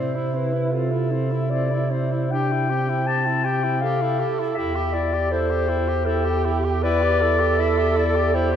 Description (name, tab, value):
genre	classical, lyrical piece for single-reed quartet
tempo	79 BPM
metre	3/4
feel	rubato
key	unclear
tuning	A4 = 440 Hz
part	dark clarinet	melody	0.0-8.6 s	G4 to A5	-24 LUFS	left 5 dB	none
part	warm alto saxophone	second line	0.0-8.6 s	C4 to B4	-26 LUFS	right 5 dB	none
part	clear tenor saxophone	accompaniment	0.0-8.6 s	C4 to G4	-28 LUFS	left 1 dB	none
part	dark bass clarinet	bass	0.0-8.6 s	E2 to C3	-24 LUFS	right 2 dB	none
room	wet scoring stage reverb, RT60 2.0 s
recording	none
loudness	-19 LUFS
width	side -9 dB against mid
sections	0.0-8.6 A section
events	none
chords	0.0 Am/C; 2.3 C; 4.6 C/E